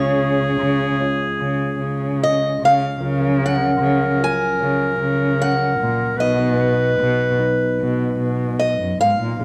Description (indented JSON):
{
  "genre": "acoustic folk-pop ballad",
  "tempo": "75 BPM",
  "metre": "4/4",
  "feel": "straight",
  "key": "unclear",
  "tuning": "A4 = 440 Hz",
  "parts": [
    { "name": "picked old ladder-braced acoustic guitar", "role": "melody", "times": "0.0-9.4 s", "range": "Db5 to Ab5", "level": "-24 LUFS", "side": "equal", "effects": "slapback echo" },
    { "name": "mellow clarinet", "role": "second line", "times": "0.0-9.4 s", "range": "Ab4 to Cb5", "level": "-25 LUFS", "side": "equal", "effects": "none" },
    { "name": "mellow tine electric piano", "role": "accompaniment", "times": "0.0-9.4 s", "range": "Bb1 to Db5", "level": "-29 LUFS", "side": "equal", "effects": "none" },
    { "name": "dark cello", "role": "bass", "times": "0.0-9.4 s", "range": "Gb2 to Db3", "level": "-23 LUFS", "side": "equal", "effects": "none" }
  ],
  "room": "light reverb, small room ambience",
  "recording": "none",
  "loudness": "-19 LUFS",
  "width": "mono",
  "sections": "0.0-9.4 A section",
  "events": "none",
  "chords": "0.0 Db; 3.0 Gbmaj7/Db; 6.2 Cb",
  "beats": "0.60 1.40 2.20 | 3.00 3.80 4.60 5.40 | 6.20 7.00 7.80 8.60 | 9.41"
}